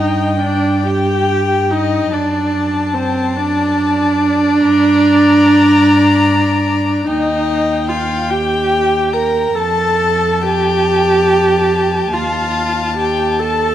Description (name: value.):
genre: classical, slow romantic movement for string quartet.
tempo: 48 BPM (dotted quarters).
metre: 12/8.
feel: rubato.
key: unclear.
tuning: A4 = 440 Hz.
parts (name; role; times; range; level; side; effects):
rich violin; melody; 0.0-13.7 s; C5 to Bb5; -22 LUFS; left 10 dB; none.
dark violin; second line; 0.0-13.7 s; G5 to Bb5; -20 LUFS; left 4 dB; none.
dark viola; accompaniment; 0.0-13.7 s; C4 to Bb4; -14 LUFS; right 2 dB; none.
rich cello; bass; 0.0-13.7 s; Eb2 to G2; -20 LUFS; right 2 dB; none.
room: wet recital hall reverb, RT60 1.4 s.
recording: none.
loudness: -12 LUFS.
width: side -11 dB against mid.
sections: 0.0-13.7 A section.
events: none.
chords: 0.0 G5; 2.1 D/F#; 4.6 Gm; 7.1 Eb; 9.6 F; 12.1 F7/Eb.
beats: 0.85 | 2.12 3.35 4.60 5.84 | 7.07 8.31 9.56 10.84 | 12.12 13.40.